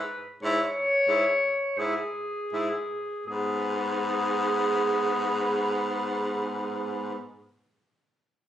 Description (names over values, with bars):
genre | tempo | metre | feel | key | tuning
classical, lyrical piece for single-reed quartet | 38-48 BPM | 4/4 | rubato | G# minor | A4 = 440 Hz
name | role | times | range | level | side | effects
warm clarinet | melody | 0.0-7.2 s | G#4 to C#5 | -28 LUFS | left 2 dB | none
warm alto saxophone | second line | 0.4-7.1 s | G#4 | -34 LUFS | right 6 dB | none
clear tenor saxophone | accompaniment | 0.4-7.1 s | B3 to E4 | -30 LUFS | left 2 dB | none
bright baritone saxophone | bass | 0.4-7.1 s | G#2 | -32 LUFS | right 2 dB | none
room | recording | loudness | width
light reverb | recorded on a phone in the room, studio reverb | -25 LUFS | side -10 dB against mid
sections
0.0-3.3 A section; 3.3-8.5 B section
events
slowing down 0.0-3.3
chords
0.0 C#m/G#; 3.3 G#m